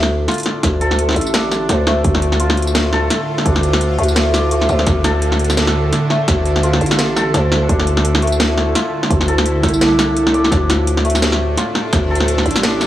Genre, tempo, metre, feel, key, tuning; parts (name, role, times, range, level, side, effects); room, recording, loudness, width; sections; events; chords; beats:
half-time drum and bass; 170 BPM; 4/4; swing 57% on 16ths, half-time; D minor; A4 = 440 Hz
bowed-like drone; sustained chords; 0.0-12.9 s; A2 to F4; -23 LUFS; right 1 dB; built-in reverb, phaser, sidechain pumping
santur; arpeggios; 0.0-12.9 s; A3 to D5; -21 LUFS; left 1 dB; tape echo
growling 808-style bass; bass; 0.0-12.9 s; A1 to D2; -17 LUFS; equal
drum and bass drum kit; drums; 0.0-12.9 s; hi-hat, snare drum, tambourine; -18 LUFS; equal
flickering grainy texture; texture; 0.4-12.9 s; A4; -29 LUFS; right 3 dB
electronic kick drum; drums; 0.6-12.0 s; -18 LUFS; equal
bell-like FM electric piano; melody; 10.7-11.5 s; F4 to G4; -27 LUFS; left 1 dB
light reverb, digital ambience; dry, gritty hardware recording; -13 LUFS; side -13 dB against mid
0.0-12.9 A section
0.0 D5
0.28 | 0.63 0.99 1.34 1.69 | 2.04 2.40 2.75 3.10 | 3.46 3.81 4.16 4.52 | 4.87 5.22 5.57 5.93 | 6.28 6.63 6.99 7.34 | 7.69 8.04 8.40 8.75 | 9.10 9.46 9.81 10.16 | 10.52 10.87 11.22 11.57 | 11.93 12.28 12.63